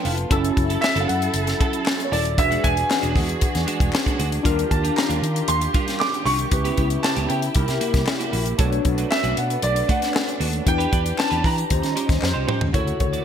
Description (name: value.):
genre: polished 1980s jazz-funk pop.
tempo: 116 BPM.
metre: 4/4.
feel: straight.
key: unclear.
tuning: A4 = 440 Hz.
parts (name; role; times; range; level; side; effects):
tine electric piano; accompaniment; 0.0-13.2 s; C#3 to A5; -27 LUFS; left 2 dB; slow stereo tremolo, analog chorus.
warm studio string section; sustained chords; 0.0-13.2 s; C3 to A4; -30 LUFS; right 1 dB; none.
clean electric guitar; riff; 0.0-13.2 s; F3 to D5; -30 LUFS; right 6 dB; analog chorus.
fingered electric bass; bass; 0.0-13.2 s; Eb1 to E3; -25 LUFS; equal; none.
tight funk drum kit; drums; 0.1-13.2 s; hi-hat, kick drum, snare drum, toms; -23 LUFS; equal; gated reverb.
clear grand piano; melody; 0.8-13.2 s; C5 to D6; -25 LUFS; right 1 dB; wide subtle chorus.
group handclap; percussion; 0.8-12.3 s; none; -36 LUFS; left 6 dB; none.
room: moderate lush hall reverb, RT60 1.7 s, studio reverb.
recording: bright 1980s-style digital production.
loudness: -19 LUFS.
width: side -8 dB against mid.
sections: 0.0-12.7 A section.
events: tine electric piano fill 0.0-0.3; drum fill 12.2-12.7.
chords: 0.3 F#m7; 2.4 E9; 4.4 Ebmaj9; 6.5 C#m7b5; 7.6 C7#11; 8.6 Bm7; 10.7 Em7; 11.7 Eb13; 12.7 Dmaj9.